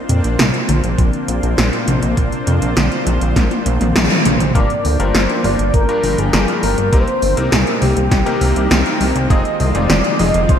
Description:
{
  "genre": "synthwave",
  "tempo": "101 BPM",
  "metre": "4/4",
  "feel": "straight",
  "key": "unclear",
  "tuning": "A4 = 440 Hz",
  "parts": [
    { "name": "lush unison pad", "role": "sustained chords", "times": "0.0-10.6 s", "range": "Eb3 to G5", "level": "-22 LUFS", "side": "equal", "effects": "chorus, sidechain pumping" },
    { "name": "soft round pluck", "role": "arpeggios", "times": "0.1-10.6 s", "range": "Bb2 to C4", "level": "-23 LUFS", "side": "right 1 dB", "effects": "chorus, digital delay" },
    { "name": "chorused synth bass", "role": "bass", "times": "0.1-10.6 s", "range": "F1 to F2", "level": "-18 LUFS", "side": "equal", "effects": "none" },
    { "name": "80s electronic pad drums", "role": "drums", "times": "0.1-10.6 s", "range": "hi-hat, snare drum, toms", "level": "-18 LUFS", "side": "equal", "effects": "gated reverb on snare and toms, gated reverb" },
    { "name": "electronic kick drum", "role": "drums", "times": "1.0-10.6 s", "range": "none", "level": "-15 LUFS", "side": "equal", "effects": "none" },
    { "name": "bright electric grand piano", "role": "stabs", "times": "4.5-10.3 s", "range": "G2 to Bb4", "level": "-23 LUFS", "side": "left 3 dB", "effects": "low-pass filter, digital delay" },
    { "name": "wide unison lead", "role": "melody", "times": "4.6-10.6 s", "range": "G4 to Eb5", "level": "-20 LUFS", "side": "left 1 dB", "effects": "lush chorus, cassette tape" }
  ],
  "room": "moderate lush hall reverb, RT60 2.6 s",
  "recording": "bright 1980s-style digital production",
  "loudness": "-13 LUFS",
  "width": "side -8 dB against mid",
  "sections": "0.0-4.5 A section; 4.5-10.6 B section",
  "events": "drum fill 3.4-4.5; band accent 4.0",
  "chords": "0.0 Bbadd9; 4.5 Gm7; 6.9 Cm7; 9.3 Fm7"
}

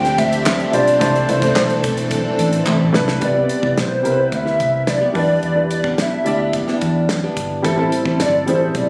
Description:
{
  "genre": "indie pop, bedroom pop",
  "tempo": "109 BPM",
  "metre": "4/4",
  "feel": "straight",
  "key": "C major",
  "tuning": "A4 = 440 Hz",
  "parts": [
    { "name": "warbly nostalgic lead", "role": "melody", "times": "0.0-8.9 s", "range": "C5 to G5", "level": "-21 LUFS", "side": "equal", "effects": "analog chorus, tape echo" },
    { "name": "fingerpicked plugged-in steel-string acoustic guitar", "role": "accompaniment", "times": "0.0-8.9 s", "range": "G2 to G4", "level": "-26 LUFS", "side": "equal", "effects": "subtle chorus, warbly pitch drift" },
    { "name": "warm upright piano", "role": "accompaniment", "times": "0.0-8.9 s", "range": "G3 to D5", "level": "-24 LUFS", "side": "equal", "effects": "cassette tape" },
    { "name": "string machine, violas", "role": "sustained chords", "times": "0.0-3.2 s", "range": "E3 to A4", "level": "-27 LUFS", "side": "equal", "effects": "ensemble chorus" },
    { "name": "vintage muted fingered electric bass", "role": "bass", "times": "0.0-8.9 s", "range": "G1 to E2", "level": "-25 LUFS", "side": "equal", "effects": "none" },
    { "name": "damped 70s drum kit", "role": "drums", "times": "0.0-8.9 s", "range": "hi-hat, kick drum, snare drum", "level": "-26 LUFS", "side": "equal", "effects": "none" },
    { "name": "group handclap", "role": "percussion", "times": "0.5-2.8 s", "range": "none", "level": "-26 LUFS", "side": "equal", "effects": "none" }
  ],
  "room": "light reverb, small room reverb",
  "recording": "recorded on a phone in the room, studio reverb",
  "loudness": "-17 LUFS",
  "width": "mono",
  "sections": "0.0-3.2 A section; 3.2-8.9 B section",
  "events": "drum fill 2.7-3.2",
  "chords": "0.0 G7sus4; 1.0 C69; 3.2 Cmaj7; 5.2 Em7; 7.6 Am7"
}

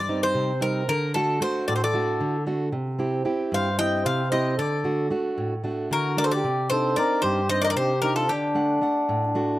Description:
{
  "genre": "greek folk, Greek bouzouki band",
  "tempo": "227 BPM (eighths)",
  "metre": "7/8",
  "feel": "straight",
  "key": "unclear",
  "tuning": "A4 = 440 Hz",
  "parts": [
    { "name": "Greek bouzouki", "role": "melody", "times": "0.0-9.6 s", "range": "G4 to G5", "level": "-26 LUFS", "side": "left 2 dB", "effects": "slapback echo" },
    { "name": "fingerpicked plugged-in steel-string acoustic guitar", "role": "accompaniment", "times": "0.0-9.6 s", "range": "G2 to F#5", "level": "-25 LUFS", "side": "right 2 dB", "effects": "none" },
    { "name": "mellow accordion", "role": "second line", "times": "1.7-9.6 s", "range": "D4 to Eb5", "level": "-26 LUFS", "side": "left 1 dB", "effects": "slapback echo" }
  ],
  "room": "light reverb",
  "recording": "recorded outdoors, with no room sound",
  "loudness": "-22 LUFS",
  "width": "side -16 dB against mid",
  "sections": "0.0-9.6 A section",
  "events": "none",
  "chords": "0.0 Cm; 0.9 D; 2.7 C; 4.6 D; 6.4 Cmadd9; 8.3 D"
}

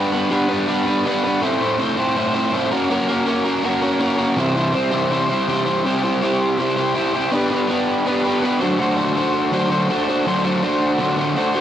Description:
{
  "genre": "rock",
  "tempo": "163 BPM",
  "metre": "4/4",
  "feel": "straight",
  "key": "D mixolydian",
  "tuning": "A4 = 441 Hz",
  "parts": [
    { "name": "crunchy overdriven guitar", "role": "solo", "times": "0.0-11.6 s", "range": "A2 to C5", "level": "-17 LUFS", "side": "equal", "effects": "none" }
  ],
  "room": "wet studio reverb, RT60 0.5 s",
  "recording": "home recording on cassette",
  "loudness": "-17 LUFS",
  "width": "side -10 dB against mid",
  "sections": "0.0-5.8 A section; 5.8-11.6 B section",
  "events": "none",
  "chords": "0.0 G; 1.4 Am; 2.7 F#/A#; 4.4 C; 7.3 G/B; 8.6 D7"
}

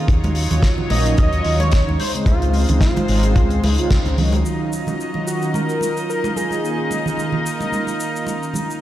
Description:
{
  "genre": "nu-disco, nu disco",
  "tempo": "110 BPM",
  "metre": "4/4",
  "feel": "swing 55% on 16ths",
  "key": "Eb dorian",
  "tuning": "A4 = 441 Hz",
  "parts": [
    { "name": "mellow synth brass", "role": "accompaniment", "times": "0.0-8.8 s", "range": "Db3 to Ab4", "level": "-24 LUFS", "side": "right 1 dB", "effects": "chorus, sidechain pumping, tape echo" },
    { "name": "dark studio string section", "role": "sustained chords", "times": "0.0-8.8 s", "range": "Gb3 to Eb5", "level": "-25 LUFS", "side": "left 1 dB", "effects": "sidechain pumping" },
    { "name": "fingered electric bass with an envelope filter", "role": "bass", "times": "0.1-4.4 s", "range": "Ab1 to Eb2", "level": "-18 LUFS", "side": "equal", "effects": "none" },
    { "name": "damped 70s drum kit", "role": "drums", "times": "0.1-8.8 s", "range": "hi-hat, shaker, snare drum", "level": "-28 LUFS", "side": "left 1 dB", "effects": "none" },
    { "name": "kick drum", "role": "drums", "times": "0.1-4.0 s", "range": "none", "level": "-16 LUFS", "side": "equal", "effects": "none" },
    { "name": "congas", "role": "percussion", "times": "0.2-8.7 s", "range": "none", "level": "-27 LUFS", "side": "right 2 dB", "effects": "none" },
    { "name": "wide unison lead", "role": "melody", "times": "0.9-7.5 s", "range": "F4 to Eb5", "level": "-25 LUFS", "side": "equal", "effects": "digital delay" }
  ],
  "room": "light reverb",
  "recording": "played on a big sound system in a bare room, stone room reverb",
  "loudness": "-16 LUFS",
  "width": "side -13 dB against mid",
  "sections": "0.0-4.5 A section; 4.5-8.8 B section",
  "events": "band accent 3.9",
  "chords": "0.1 Ebm9; 2.0 Dbmaj9; 4.5 Ebm9; 6.6 Db69"
}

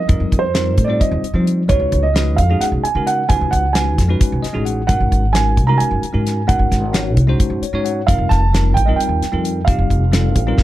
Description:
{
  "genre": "electric jazz fusion",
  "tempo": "263 BPM (eighths)",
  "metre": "7/8",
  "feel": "straight",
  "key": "unclear",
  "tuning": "A4 = 443 Hz",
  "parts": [
    { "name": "dark grand piano", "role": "melody", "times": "0.0-10.6 s", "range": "C5 to Bb5", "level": "-20 LUFS", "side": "right 5 dB", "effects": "none" },
    { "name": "upright bass", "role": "bass", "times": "0.0-10.6 s", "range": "F1 to F3", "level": "-17 LUFS", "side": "equal", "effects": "none" },
    { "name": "bell-like tine electric piano", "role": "accompaniment", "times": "0.1-10.6 s", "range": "G3 to Gb5", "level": "-22 LUFS", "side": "left 2 dB", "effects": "fast stereo tremolo" },
    { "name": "damped 70s drum kit", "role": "drums", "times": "0.1-10.6 s", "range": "hi-hat, kick drum, snare drum", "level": "-17 LUFS", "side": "equal", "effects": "none" }
  ],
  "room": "little or no reverb",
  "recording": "none",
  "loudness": "-14 LUFS",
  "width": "side -14 dB against mid",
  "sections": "0.0-10.6 A section",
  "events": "tine electric piano fill 4.2-4.9, 7.4-8.1",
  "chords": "0.0 F9sus4; 1.7 Db9sus4; 4.9 Ab9sus4; 8.1 F9sus4"
}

